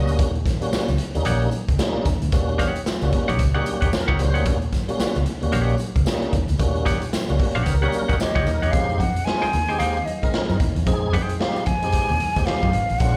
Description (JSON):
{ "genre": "funk", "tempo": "112 BPM", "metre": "4/4", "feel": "swing 60% on 16ths", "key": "unclear", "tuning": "A4 = 443 Hz", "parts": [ { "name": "tonewheel organ", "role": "stabs", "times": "0.0-13.2 s", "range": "G3 to Eb5", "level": "-29 LUFS", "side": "equal", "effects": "chorus vibrato, fast rotary speaker, slapback echo" }, { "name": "vintage muted fingered electric bass", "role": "bass", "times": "0.0-13.2 s", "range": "Ab1 to Gb2", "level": "-25 LUFS", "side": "equal", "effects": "none" }, { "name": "raw garage drum kit", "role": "drums", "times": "0.1-13.2 s", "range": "hi-hat, kick drum, snare drum", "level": "-27 LUFS", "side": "equal", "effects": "none" }, { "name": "tambourine", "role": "percussion", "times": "0.1-8.6, 13.0-13.2 s", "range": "none", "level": "-46 LUFS", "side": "equal", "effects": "none" }, { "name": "congas", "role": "percussion", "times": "0.2-13.2 s", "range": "none", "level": "-36 LUFS", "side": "equal", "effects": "none" }, { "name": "semi-hollow electric guitar", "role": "accompaniment", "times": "1.3-11.4 s", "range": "Eb4 to G5", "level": "-29 LUFS", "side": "equal", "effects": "slapback echo" }, { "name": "breathy mellow silver concert flute", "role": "melody", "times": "8.2-13.2 s", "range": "Eb5 to Ab5", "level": "-27 LUFS", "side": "equal", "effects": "tape echo" } ], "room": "small room ambience", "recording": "live gig heard through the venue's PA, club reverb", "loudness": "-22 LUFS", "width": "mono", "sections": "0.0-8.7 A section; 8.7-13.2 B section", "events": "tonewheel organ fill 0.0, 3.4-4.5, 7.1-8.7", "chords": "0.0 Eb7#9; 8.7 Fm9" }